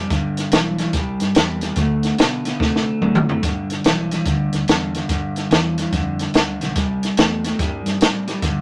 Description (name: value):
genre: electric blues shuffle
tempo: 144 BPM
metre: 4/4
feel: swing 64% on 8ths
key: G mixolydian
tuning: A4 = 440 Hz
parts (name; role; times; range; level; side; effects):
- electric guitar through a small old amp; riff; 0.0-8.6 s; G2 to B3; -24 LUFS; equal; spring reverb
- vintage muted fingered electric bass; bass; 0.0-8.6 s; F#1 to C3; -28 LUFS; equal; none
- compact cocktail drum kit; drums; 0.1-8.6 s; hi-hat, kick drum, snare drum, toms; -22 LUFS; equal; none
room: moderate studio reverb, RT60 0.5 s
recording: none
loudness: -19 LUFS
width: mono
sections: 0.0-3.4 A section; 3.4-8.6 B section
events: drum fill 2.6-3.4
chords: 0.1 G; 0.9 C; 1.8 D7(no3); 3.4 G; 6.8 C